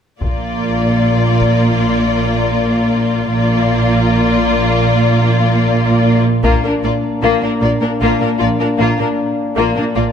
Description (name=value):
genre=cinematic, epic orchestral film score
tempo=77 BPM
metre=4/4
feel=straight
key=unclear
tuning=A4 = 437 Hz
part: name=clear studio violin section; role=melody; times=0.2-10.0 s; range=F4 to D5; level=-21 LUFS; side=left 7 dB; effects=none
part: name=rich symphonic violin section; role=second line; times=0.2-10.0 s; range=Bb3 to F4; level=-20 LUFS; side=left 4 dB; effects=none
part: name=rich symphonic viola section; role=accompaniment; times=0.2-10.0 s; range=Bb3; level=-20 LUFS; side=left 1 dB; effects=none
part: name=clear symphonic double bass section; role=bass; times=0.2-10.0 s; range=Bb1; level=-18 LUFS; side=right 3 dB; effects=none
part: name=rich symphonic cello section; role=bass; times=0.2-10.0 s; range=Bb2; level=-18 LUFS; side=right 2 dB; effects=none
part: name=taiko ensemble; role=drums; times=0.2-1.8, 6.4-8.0 s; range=none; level=-22 LUFS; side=equal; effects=none
part: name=mellow French horn section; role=sustained chords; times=6.4-10.1 s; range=Bb3 to D4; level=-19 LUFS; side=left 3 dB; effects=none
room=wet concert hall reverb, RT60 2.2 s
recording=none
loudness=-12 LUFS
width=side -8 dB against mid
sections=0.2-6.4 A section; 6.4-10.1 B section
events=build-up 6.4-10.1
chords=0.2 Bb